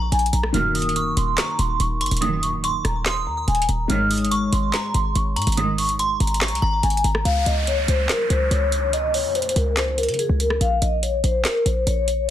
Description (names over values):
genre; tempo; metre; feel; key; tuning
hip hop, trap; 143 BPM; 4/4; half-time; unclear; A4 = 439 Hz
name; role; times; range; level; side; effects
vibraphone with soft mallets; melody; 0.0-12.3 s; Ab4 to F6; -23 LUFS; left 1 dB; digital delay
delicate synth tine bell; second line; 0.0-7.2 s; Bb5 to Eb6; -29 LUFS; left 1 dB; chorus, phaser, digital delay
felt-muted upright piano; accompaniment; 0.0-7.3 s; Eb3 to Db5; -29 LUFS; left 4 dB; none
short 808-style bass; bass; 0.0-12.3 s; Eb1 to Db3; -23 LUFS; equal; none
trap drum kit; drums; 0.1-12.2 s; handclaps, hi-hat, rim click, snare drum; -26 LUFS; right 1 dB; none
dark studio string section; stabs; 0.5-6.0 s; Gb2 to Eb3; -28 LUFS; right 5 dB; none
downlifter; sound effects; 7.3-10.6 s; none; -30 LUFS; right 1 dB; none
room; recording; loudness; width
studio reverb; dense, heavily limited modern master; -18 LUFS; side -11 dB against mid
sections
0.0-7.3 A section; 7.3-12.3 B section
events
none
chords
0.0 Bbm7; 0.5 Ebm; 3.9 Absus4; 7.3 N.C.; 10.6 Bbm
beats
0.12 | 0.54 0.96 1.38 1.80 | 2.22 2.64 3.06 3.48 | 3.90 4.32 4.74 5.16 | 5.58 5.99 6.41 6.83 | 7.25 7.67 8.09 8.51 | 8.93 9.35 9.77 10.19 | 10.61 11.03 11.45 11.87 | 12.29